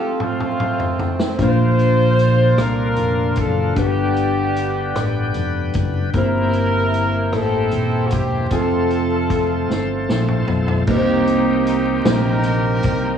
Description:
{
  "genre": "slow gospel",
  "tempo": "51 BPM (dotted quarters)",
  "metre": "6/8",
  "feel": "straight",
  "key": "unclear",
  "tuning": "A4 = 439 Hz",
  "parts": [
    { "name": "clear horn section", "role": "melody", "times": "0.0-13.2 s", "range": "A3 to C5", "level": "-23 LUFS", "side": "left 2 dB", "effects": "none" },
    { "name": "warm alto saxophone", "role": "melody", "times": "0.0-10.1 s", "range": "F4 to C5", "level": "-24 LUFS", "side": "right 2 dB", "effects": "analog delay" },
    { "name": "mellow tine electric piano", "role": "accompaniment", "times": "0.0-13.2 s", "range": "G2 to C5", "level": "-21 LUFS", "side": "left 1 dB", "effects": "medium stereo tremolo" },
    { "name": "swinging big-band drum kit", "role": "drums", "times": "0.2-13.0 s", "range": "crash cymbal, hi-hat, kick drum, rim click, snare drum, toms", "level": "-24 LUFS", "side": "equal", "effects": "none" },
    { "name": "bright tonewheel organ", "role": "sustained chords", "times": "1.4-13.2 s", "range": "Db3 to B4", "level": "-27 LUFS", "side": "right 2 dB", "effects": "slow rotary speaker, overdrive" },
    { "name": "fingered electric bass", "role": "bass", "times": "1.4-13.2 s", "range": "Eb1 to C2", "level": "-22 LUFS", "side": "equal", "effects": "none" }
  ],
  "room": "light reverb, small room ambience",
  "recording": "worn, warbling old tape, cassette tape, vinyl crackle, warbly pitch drift, studio ambience",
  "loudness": "-16 LUFS",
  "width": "side -8 dB against mid",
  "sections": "0.0-10.9 A section; 10.9-13.2 B section",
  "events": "drum fill 0.0-1.4, 9.7-10.9; tonewheel organ fill 5.0-6.1",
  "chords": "0.0 F; 1.4 Bb; 3.8 G; 6.1 C7/G; 8.5 F; 10.9 Cm7"
}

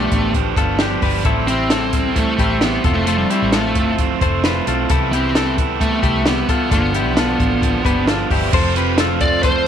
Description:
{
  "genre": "jangly indie pop",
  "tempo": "132 BPM",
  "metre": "4/4",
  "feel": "straight",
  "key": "unclear",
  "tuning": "A4 = 440 Hz",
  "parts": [
    { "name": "smooth overdriven lead guitar", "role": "melody", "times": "0.0-9.7 s", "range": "G3 to D5", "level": "-20 LUFS", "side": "left 1 dB", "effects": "slapback echo" },
    { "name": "biting overdriven guitar", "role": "accompaniment", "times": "0.0-9.7 s", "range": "G2 to F4", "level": "-21 LUFS", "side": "right 12 dB", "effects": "none" },
    { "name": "direct-recorded clean electric guitar", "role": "arpeggios", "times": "0.0-9.7 s", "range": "D4 to C5", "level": "-22 LUFS", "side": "left 12 dB", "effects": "slapback echo" },
    { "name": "vintage muted fingered electric bass", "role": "bass", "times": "0.0-9.7 s", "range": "F1 to C2", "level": "-23 LUFS", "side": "equal", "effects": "none" },
    { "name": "compact cocktail drum kit", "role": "drums", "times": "0.1-9.5 s", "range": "crash cymbal, hi-hat, kick drum, snare drum", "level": "-20 LUFS", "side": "equal", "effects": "none" }
  ],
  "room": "light reverb, studio reverb",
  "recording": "1960s-style stereo with parts hard left and right",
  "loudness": "-14 LUFS",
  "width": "side -9 dB against mid",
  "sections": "0.0-8.5 A section; 8.5-9.7 B section",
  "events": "none",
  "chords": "0.0 G7; 1.3 Am7; 2.8 Fmaj7; 4.9 Cmaj7; 6.7 G7; 8.5 F"
}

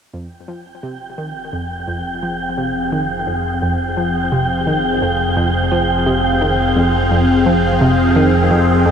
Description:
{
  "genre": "ambient, sequencer-driven space music",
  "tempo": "86 BPM",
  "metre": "4/4",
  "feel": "straight",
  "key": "F minor",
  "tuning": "A4 = 440 Hz",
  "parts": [
    { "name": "evolving wavetable pad", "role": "sustained chords", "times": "1.8-8.9 s", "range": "F3 to F5", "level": "-18 LUFS", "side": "left 1 dB", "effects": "phaser, built-in reverb" },
    { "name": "analog pluck", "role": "riff", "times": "0.1-8.9 s", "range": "F2 to F3", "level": "-20 LUFS", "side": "equal", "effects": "chorus, ping-pong delay" },
    { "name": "fat analog bass", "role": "bass", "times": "0.1-8.9 s", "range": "F1", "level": "-21 LUFS", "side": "equal", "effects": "none" },
    { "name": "wind-like tuned noise texture", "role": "texture", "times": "1.0-8.9 s", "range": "G5", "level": "-21 LUFS", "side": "right 2 dB", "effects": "built-in reverb" }
  ],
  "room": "wet huge ambient reverb, RT60 7.8 s",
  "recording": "none",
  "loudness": "-14 LUFS",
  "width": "side -7 dB against mid",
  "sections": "0.1-8.9 A section",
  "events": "fade-in on synth arpeggio sound 0.1-8.9; fade-in on ambient pad 0.1-8.9; fade-in on analog synth bass 0.1-8.9",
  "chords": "0.1 Fm"
}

